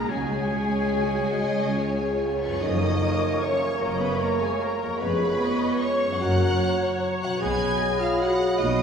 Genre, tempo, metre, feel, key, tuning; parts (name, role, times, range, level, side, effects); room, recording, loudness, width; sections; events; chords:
classical, orchestral ballroom waltz; 133-164 BPM; 3/4; rubato; F# major; A4 = 438 Hz
warm symphonic violin section; melody; 0.0-8.8 s; G#5 to G#6; -34 LUFS; left 2 dB
clear oboe; second line; 0.0-8.8 s; G#4 to D#5; -34 LUFS; left 1 dB
mellow hollow concert flute; second line; 0.0-8.8 s; G#5 to C#6; -36 LUFS; equal
warm clarinet; second line; 0.0-8.8 s; G#4 to G#5; -33 LUFS; left 1 dB
warm symphonic violin section; second line; 0.0-8.8 s; F#4 to G#5; -32 LUFS; equal
rich symphonic viola section; accompaniment; 0.0-8.8 s; G#3 to D#5; -32 LUFS; right 1 dB
concert harp; arpeggios; 0.0-8.8 s; E#2 to B4; -31 LUFS; left 3 dB
clear symphonic cello section; bass; 0.0-8.8 s; E#2 to G#3; -32 LUFS; right 1 dB
rich symphonic double bass section; bass; 0.0-8.8 s; E#1 to C#2; -31 LUFS; right 1 dB
cymbal swell and tam-tam; percussion; 0.1-4.2 s; -36 LUFS; right 1 dB
mellow French horn section; sustained chords; 0.5-8.8 s; G#3 to G#4; -29 LUFS; left 1 dB
clear bassoon; accompaniment; 2.6-8.8 s; F#3 to A#3; -31 LUFS; right 3 dB
wet scoring stage reverb, RT60 1.7 s; heard from further back in the room, small room ambience; -22 LUFS; side -6 dB against mid
0.0-2.6 A section; 2.6-8.8 B section
band accent 2.6-3.0
0.1 C#sus4; 1.4 C#; 2.6 F#; 5.0 C#7/E#; 6.2 F#; 7.4 B